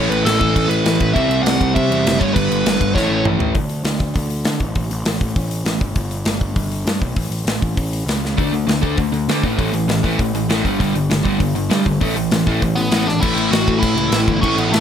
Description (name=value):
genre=punk rock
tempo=199 BPM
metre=4/4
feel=straight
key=unclear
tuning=A4 = 440 Hz
part: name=nasal lead guitar with a parked wah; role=melody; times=0.0-3.2, 12.8-14.8 s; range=A3 to F#5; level=-20 LUFS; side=equal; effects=overdrive
part: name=crunchy overdriven guitar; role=riff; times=0.0-3.6, 8.4-14.8 s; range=G2 to D4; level=-18 LUFS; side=equal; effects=none
part: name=fuzz picked electric bass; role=bass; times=0.0-14.8 s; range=F#1 to D3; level=-22 LUFS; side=equal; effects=overdrive
part: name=big rock drum kit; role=drums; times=0.1-14.8 s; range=crash cymbal, hi-hat, kick drum, snare drum, toms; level=-20 LUFS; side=equal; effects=none
room=light reverb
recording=none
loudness=-15 LUFS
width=side -9 dB against mid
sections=0.0-3.6 A section; 3.6-13.2 B section; 13.2-14.8 A section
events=drum fill 3.0-3.6, 8.2, 13.1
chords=0.0 A5; 1.2 C; 2.2 G; 3.0 A; 3.6 N.C.; 7.2 A; 8.4 D5; 9.4 A5; 10.6 G5; 12.0 A5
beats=0.26 0.56 0.86 | 1.16 1.46 1.76 2.06 | 2.35 2.65 2.95 3.25 | 3.55 3.85 4.15 4.45 | 4.75 5.05 5.36 5.66 | 5.96 6.26 6.56 6.86 | 7.16 7.47 7.77 8.07 | 8.37 8.68 8.98 9.28 | 9.58 9.89 10.19 10.49 | 10.80 11.10 11.40 11.71 | 12.01 12.31 12.62 12.92 | 13.22 13.52 13.82 14.12 | 14.43 14.72